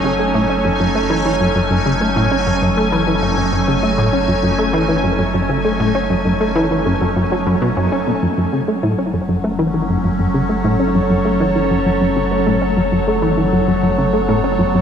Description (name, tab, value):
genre	ambient, sequencer-driven space music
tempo	99 BPM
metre	4/4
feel	straight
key	F# dorian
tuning	A4 = 440 Hz
part	evolving wavetable pad	sustained chords	0.0-14.8 s	F#3 to C#5	-18 LUFS	right 1 dB	chorus, built-in reverb, shimmer reverb
part	plucky analog bass	riff	0.0-14.8 s	F#2 to C#4	-17 LUFS	equal	analog chorus, analog delay, shimmer reverb
part	warm sub bass	bass	0.0-14.8 s	F#1	-26 LUFS	equal	none
part	bubbling stepped-filter texture	texture	0.0-8.2 s	D#4 to G#5	-24 LUFS	left 2 dB	chorus, built-in reverb, shimmer reverb
room	moderate plate reverb, RT60 2.6 s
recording	cassette tape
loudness	-14 LUFS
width	side -8 dB against mid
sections	0.0-8.2 A section; 8.2-14.8 B section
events	none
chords	0.0 F#m